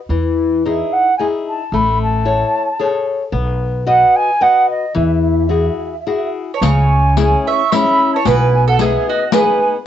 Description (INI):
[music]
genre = italian folk, Italian serenade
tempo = 111 BPM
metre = 3/4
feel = swing 53% on 8ths, rubato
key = E major, C# minor from 6.6 s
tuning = A4 = 440 Hz
[part]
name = flamenco guitar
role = accompaniment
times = 0.1-9.8 s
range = B2 to D#5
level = -18 LUFS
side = left 6 dB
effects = cassette tape
[part]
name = upright bass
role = bass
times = 0.1-9.0 s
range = A1 to E2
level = -17 LUFS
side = right 1 dB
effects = transformer saturation
[part]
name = mellow wooden flute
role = melody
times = 0.6-9.7 s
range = D#5 to C#6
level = -16 LUFS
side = right 2 dB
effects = cassette tape
[part]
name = mandolin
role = second line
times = 6.5-9.7 s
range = F#4 to E5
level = -18 LUFS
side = right 9 dB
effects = cassette tape
[part]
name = riq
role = percussion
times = 6.6-9.6 s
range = none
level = -21 LUFS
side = left 10 dB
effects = none
[sound]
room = moderate studio reverb, RT60 0.6 s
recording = home recording on cassette, nothing above 7.9 kHz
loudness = -12 LUFS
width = side -10 dB against mid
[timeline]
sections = 0.0-6.6 A section; 6.6-9.9 B section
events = none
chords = 0.1 Emaj7; 1.7 Amaj7; 3.3 B; 4.9 Eadd9; 6.6 C#m; 8.3 G#m/B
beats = | 0.09 0.64 1.19 | 1.72 2.26 2.79 | 3.32 3.86 4.40 | 4.94 5.49 6.05 | 6.61 7.16 7.71 | 8.26 8.79 9.32